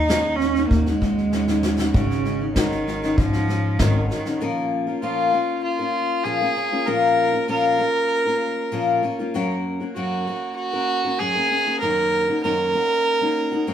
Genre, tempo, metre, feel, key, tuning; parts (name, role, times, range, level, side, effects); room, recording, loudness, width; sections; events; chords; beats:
folk; 97 BPM; 4/4; straight; Bb minor; A4 = 437 Hz
rich cello; second line; 0.0-4.4 s; Db3 to Eb4; -23 LUFS; right 3 dB
picked steel-string acoustic guitar; accompaniment; 0.0-13.7 s; Gb2 to Bb4; -24 LUFS; left 3 dB
upright bass; bass; 0.0-4.1 s; Ab1 to Ab2; -24 LUFS; equal
soft brush drum kit; drums; 0.1-4.3 s; kick drum, snare drum; -24 LUFS; equal
warm fiddle; melody; 5.0-13.7 s; F4 to Bb4; -21 LUFS; right 2 dB
wet studio reverb, RT60 0.9 s; band playing live in one room; -19 LUFS; side -9 dB against mid
0.0-1.9 A section; 1.9-4.4 B section; 4.4-13.7 C section
cello solo 0.0-1.9; drum fill 1.3-1.9
0.0 Ab7sus4; 4.4 Bbm; 9.3 Gb; 11.8 Ebm7/Gb
0.09 0.71 1.32 | 1.94 2.56 3.17 3.79 | 4.41 5.03 5.64 6.26 | 6.88 7.49 8.11 8.73 | 9.35 9.96 10.58 11.20 | 11.82 12.44 13.05 13.67